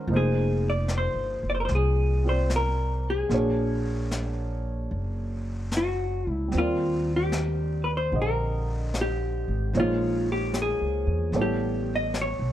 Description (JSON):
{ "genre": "jazz ballad", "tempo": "75 BPM", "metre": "4/4", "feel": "swing 68% on 8ths", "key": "unclear", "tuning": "A4 = 437 Hz", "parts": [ { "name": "vintage hollow-body jazz guitar", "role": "melody", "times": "0.0-12.5 s", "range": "F4 to Eb5", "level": "-28 LUFS", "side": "left 2 dB", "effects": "plate reverb" }, { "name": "warm concert grand piano", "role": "accompaniment", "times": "0.0-12.5 s", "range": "D3 to Eb5", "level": "-31 LUFS", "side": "right 2 dB", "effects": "none" }, { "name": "upright bass", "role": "bass", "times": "0.1-12.5 s", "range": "F1 to E2", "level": "-27 LUFS", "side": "equal", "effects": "none" }, { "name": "jazz brush drum kit", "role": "drums", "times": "0.1-12.5 s", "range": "brushed snare drum, hi-hat, snare drum", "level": "-37 LUFS", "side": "left 2 dB", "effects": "none" } ], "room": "light reverb", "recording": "dark, warm production", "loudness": "-24 LUFS", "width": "side -12 dB against mid", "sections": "0.0-12.5 A section", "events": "none", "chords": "0.1 Fm7; 3.3 Bb7alt; 6.5 Ebmaj9; 9.7 Bbm7; 11.3 A9", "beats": "| 0.09 0.90 1.70 2.50 | 3.30 4.11 4.91 5.72 | 6.52 7.33 8.13 8.93 | 9.73 10.54 11.34 12.14" }